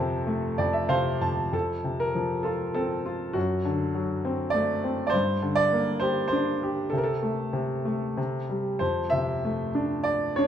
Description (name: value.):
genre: classical, lyrical solo piano.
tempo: 99 BPM.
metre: 3/4.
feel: uneven beats, rubato.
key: F major.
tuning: A4 = 441 Hz.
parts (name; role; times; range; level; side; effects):
clear grand piano; solo; 0.0-10.5 s; F2 to A5; -24 LUFS; equal; none.
room: moderate recital hall reverb, RT60 1.7 s.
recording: dark, warm production.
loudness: -24 LUFS.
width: side -9 dB against mid.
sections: 0.0-1.5 A section; 1.5-10.5 A section.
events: grand piano fill 0.3-1.5.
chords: 0.0 F; 3.4 D7/F#; 5.1 Gm; 6.9 Am/C; 8.2 C5; 8.8 F6.